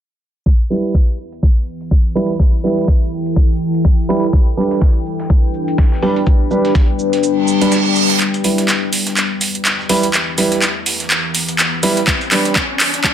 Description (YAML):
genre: bass house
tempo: 124 BPM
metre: 4/4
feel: swing 57% on 16ths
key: E minor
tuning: A4 = 441 Hz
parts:
  - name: deep dark ambient pad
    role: sustained chords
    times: 1.7-13.1 s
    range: E3 to G5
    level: -20 LUFS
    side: left 3 dB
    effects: chorus, built-in reverb, sidechain pumping
  - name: electronic kick drum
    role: drums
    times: 0.5-6.9, 12.1-13.1 s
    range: none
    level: -12 LUFS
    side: equal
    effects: overdrive
  - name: garage drum kit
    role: drums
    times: 0.5-13.1 s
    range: handclaps, hi-hat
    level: -16 LUFS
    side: equal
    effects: overdrive, high-pass filter on hats, high-pass filter on snare
  - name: warm concert grand piano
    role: stabs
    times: 0.7-12.5 s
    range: G3 to B4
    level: -18 LUFS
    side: right 2 dB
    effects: sidechain pumping, low-pass filter, ping-pong delay
  - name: dusty soul sampler-style drum kit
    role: drums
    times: 4.3-13.1 s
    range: hi-hat, shaker, snare drum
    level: -26 LUFS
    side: right 1 dB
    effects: sidechain pumping on perc, high-pass filter on perc, sidechain pumping on hats, high-pass filter on hats, high-pass filter on snare
  - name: reverse cymbal and riser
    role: sound effects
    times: 7.4-13.1 s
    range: none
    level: -22 LUFS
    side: right 4 dB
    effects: none
room: light reverb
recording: high-pass filter, low-pass filter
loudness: -13 LUFS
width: side -10 dB against mid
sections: 0.5-8.2 A section; 8.2-13.1 B section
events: filter sweep 0.5-8.2; kick drops out 7.2-8.2; reverse cymbal 7.4-8.2; build-up 8.2-13.1; drum fill 8.2-13.1; riser 8.2-13.1; filter sweep on grand piano 8.2-13.1; filter sweep on ambient pad 8.2-13.1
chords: 0.5 Em; 4.3 G; 8.2 Em; 12.1 G